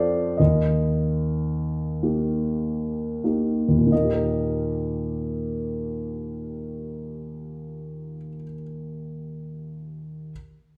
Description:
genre	classical, lyrical solo piano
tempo	29-41 BPM (dotted quarters)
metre	6/8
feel	rubato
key	Eb major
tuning	A4 = 438 Hz
part	dark concert grand piano	solo	0.0-10.3 s	Eb2 to F5	-26 LUFS	equal	none
room	moderate recital hall reverb, RT60 1.3 s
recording	none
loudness	-25 LUFS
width	mono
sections	0.0-3.9 A section; 3.9-7.8 B section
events	slowing down 0.0-3.9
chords	0.4 Eb

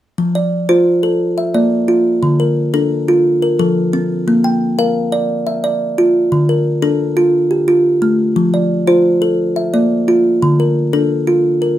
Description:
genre	southern african traditional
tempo	117 BPM (dotted quarters)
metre	12/8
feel	straight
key	unclear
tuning	A4 = 440 Hz
part	kalimba	arpeggios	0.2-11.8 s	D3 to G5	-12 LUFS	equal	none
room	moderate studio reverb, RT60 0.6 s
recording	none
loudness	-12 LUFS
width	side -12 dB against mid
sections	0.2-11.8 A section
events	none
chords	0.2 F; 1.2 Bb; 2.2 Dm; 3.2 F; 4.3 Bb; 6.3 Dm; 8.4 F; 9.4 Bb; 10.4 Dm

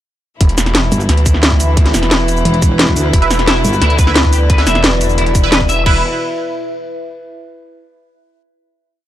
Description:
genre	dark technical drum and bass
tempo	176 BPM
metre	4/4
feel	straight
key	unclear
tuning	A4 = 441 Hz
part	clear studio string section	sustained chords	0.4-6.0 s	B2 to E4	-20 LUFS	left 2 dB	sidechain pumping
part	snarling distorted saw bass	bass	0.4-6.0 s	E1 to D2	-15 LUFS	equal	distortion, overdrive
part	drum and bass drum kit	drums	0.4-5.9 s	crash cymbal, hi-hat, shaker, snare drum	-15 LUFS	equal	none
part	electronic kick drum	drums	0.4-5.9 s	none	-12 LUFS	equal	none
part	warbly tape-like pad	texture	0.4-7.2 s	E4 to E5	-22 LUFS	equal	chorus, built-in reverb, sidechain pumping
part	metallic wobble bass	bass	0.9-3.8 s	E1 to D2	-14 LUFS	equal	chorus
part	band-passed chord stab	stabs	3.2-6.0 s	E4 to E5	-20 LUFS	right 4 dB	phaser, analog chorus, tape echo
part	clean electric guitar	arpeggios	3.5-6.0 s	E4 to E5	-20 LUFS	left 2 dB	ensemble chorus, sidechain pumping, tape echo
room	digital ambience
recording	none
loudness	-10 LUFS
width	side -12 dB against mid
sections	0.4-5.9 drop; 5.9-7.2 final chord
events	drop 0.4-5.9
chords	0.4 E5

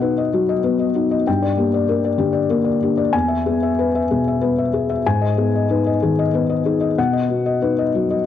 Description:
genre	neoclassical minimalist piano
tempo	94 BPM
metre	3/4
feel	rubato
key	unclear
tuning	A4 = 440 Hz
part	felt-muted upright piano	solo	0.0-8.3 s	E2 to G#5	-16 LUFS	left 3 dB	cassette tape
room	light reverb, small room ambience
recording	home recording on cassette, nothing above 10.4 kHz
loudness	-16 LUFS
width	side -10 dB against mid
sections	0.0-8.3 A section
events	none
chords	0.0 B; 1.3 Gm; 3.1 E; 5.0 G#m; 7.0 B

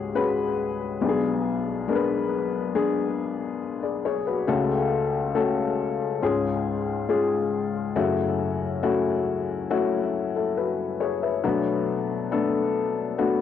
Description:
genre	pop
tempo	69 BPM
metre	4/4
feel	straight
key	F# minor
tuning	A4 = 440 Hz
part	dark upright piano	solo	0.0-13.4 s	B1 to E5	-23 LUFS	left 4 dB	cassette tape, tape echo
room	wet studio reverb, RT60 0.5 s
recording	home recording on cassette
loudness	-23 LUFS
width	side -9 dB against mid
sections	0.0-13.4 A section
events	none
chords	0.0 C#sus4; 1.0 G#dim/B; 4.5 F#m/C#; 6.2 C#; 8.0 F#m7; 11.4 Bm7

